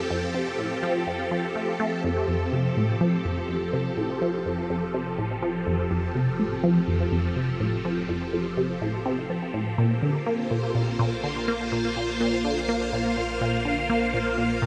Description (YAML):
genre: ambient, sequencer-driven space music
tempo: 124 BPM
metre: 4/4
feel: straight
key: unclear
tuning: A4 = 440 Hz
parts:
  - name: phased string machine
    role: sustained chords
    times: 0.0-14.7 s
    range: F3 to F5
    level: -30 LUFS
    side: equal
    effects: ensemble chorus, phaser
  - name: resonant blip pluck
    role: riff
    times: 0.1-14.7 s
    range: F2 to Bb3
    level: -28 LUFS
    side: equal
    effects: phaser, delay
  - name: round analog bass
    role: bass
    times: 2.0-14.7 s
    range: F1 to Bb1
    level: -45 LUFS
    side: equal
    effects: none
room: wet huge ambient reverb, RT60 7.7 s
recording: none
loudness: -26 LUFS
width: mono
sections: 0.0-2.0 A section; 2.0-14.7 B section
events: fade-in on analog synth bass 2.0-14.7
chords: 0.0 Fadd9; 9.8 Bbmaj7